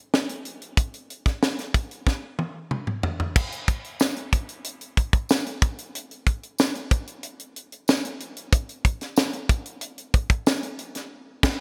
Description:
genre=pop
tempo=93 BPM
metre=4/4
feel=straight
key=none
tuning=none
part: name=tight funk drum kit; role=drums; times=0.1-11.6 s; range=crash cymbal, hi-hat, kick drum, snare drum, toms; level=-25 LUFS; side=equal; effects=gated reverb
part: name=tambourine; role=percussion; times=4.0-10.6 s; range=none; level=-39 LUFS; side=equal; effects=none
room=light reverb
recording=bright 1980s-style digital production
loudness=-26 LUFS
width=mono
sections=0.0-3.4 A section; 3.4-11.6 B section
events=drum fill 2.1-3.4; band accent 11.1-11.6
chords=none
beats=0.12 | 0.77 1.42 2.06 2.71 | 3.36 4.00 4.65 5.29 | 5.94 6.59 7.23 7.88 | 8.53 9.17 9.82 10.46 | 11.11

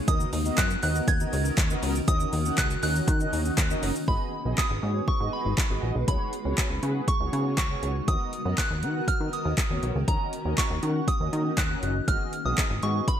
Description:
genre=dance-pop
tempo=120 BPM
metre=4/4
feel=straight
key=G# minor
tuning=A4 = 441 Hz
part: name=granular cloud pad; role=sustained chords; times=0.0-13.2 s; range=C#3 to B4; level=-34 LUFS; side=left 1 dB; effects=built-in reverb, lush chorus, sidechain pumping
part: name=soft synth bell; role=melody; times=0.1-13.2 s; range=A#5 to G#6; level=-32 LUFS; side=right 2 dB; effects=chorus, digital delay
part: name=mellow synth brass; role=accompaniment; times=0.1-13.1 s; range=B3 to F#5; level=-34 LUFS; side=right 1 dB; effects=chorus
part: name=plucky analog bass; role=bass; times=0.1-13.1 s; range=F#1 to D#3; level=-28 LUFS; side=equal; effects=sidechain pumping
part: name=deep house drum kit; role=drums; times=0.1-13.2 s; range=handclaps, hi-hat, kick drum, shaker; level=-26 LUFS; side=equal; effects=overdrive, gated reverb
part: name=group handclap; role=percussion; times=0.6-3.7 s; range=none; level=barely audible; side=none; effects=none
room=digital ambience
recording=bright 1980s-style digital production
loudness=-24 LUFS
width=side -9 dB against mid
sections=0.0-4.1 A section; 4.1-13.2 B section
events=none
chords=0.1 Bmaj7/D#; 2.1 D#m7; 4.1 G#m7; 6.1 C#7sus4; 8.1 Bmaj7/D#; 10.1 D#m7; 12.1 G#m7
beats=| 0.08 0.58 1.08 1.58 | 2.08 2.58 3.08 3.58 | 4.08 4.58 5.08 5.58 | 6.08 6.58 7.08 7.58 | 8.08 8.58 9.08 9.58 | 10.08 10.58 11.08 11.58 | 12.08 12.58 13.08

